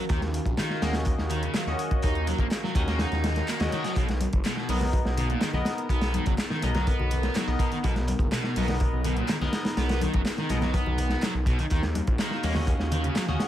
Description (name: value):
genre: breakbeat, breaks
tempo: 124 BPM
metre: 4/4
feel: straight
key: unclear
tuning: A4 = 440 Hz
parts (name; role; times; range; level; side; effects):
- warbly tape-like pad; sustained chords; 0.0-13.5 s; Eb3 to F5; -35 LUFS; equal; chorus, built-in reverb, sidechain pumping
- distorted electric guitar; riff; 0.0-13.2 s; A#2 to Eb4; -32 LUFS; equal; distortion, tape echo
- phased detuned saw bass; bass; 0.1-13.4 s; F#1 to Eb2; -28 LUFS; equal; phaser
- crunchy breakbeat drum kit; drums; 0.1-13.5 s; hi-hat, kick drum, snare drum; -28 LUFS; equal; none
- punchy analog drum machine; drums; 0.1-13.5 s; handclaps, hi-hat; -38 LUFS; equal; none
- band-passed chord stab; stabs; 0.8-13.5 s; B3 to Eb5; -34 LUFS; left 1 dB; phaser, tape echo
- reverse cymbal; sound effects; 3.6-4.0 s; none; -41 LUFS; right 1 dB; none
- congas; percussion; 4.2-13.4 s; none; -35 LUFS; left 2 dB; none
room: light reverb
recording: none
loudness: -24 LUFS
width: side -12 dB against mid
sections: 0.0-13.5 A section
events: reverse cymbal 3.6-4.0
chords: 0.0 Ebm7; 4.0 Bmaj7; 11.7 Ebm7